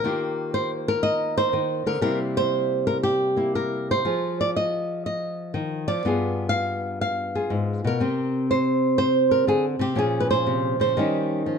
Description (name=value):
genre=solo jazz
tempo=121 BPM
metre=4/4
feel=swing 67% on 8ths, rubato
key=C minor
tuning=A4 = 440 Hz
part: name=flamenco guitar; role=solo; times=0.0-11.6 s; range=G2 to F5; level=-21 LUFS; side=equal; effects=none
room=moderate large studio reverb, RT60 1.2 s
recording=dark, warm production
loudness=-21 LUFS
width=side -6 dB against mid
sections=0.0-11.6 A section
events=none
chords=0.0 Eb69; 2.0 C7; 4.0 Fm7; 6.0 G7b9; 8.0 Csus2; 10.0 Bbm7; 11.0 Eb7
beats=| 0.04 0.54 1.03 1.53 | 2.03 2.53 3.03 3.54 | 4.05 4.55 5.05 5.54 | 6.04 6.53 7.02 7.50 | 7.99 8.48 8.97 9.47 | 9.97 10.46 10.97 11.48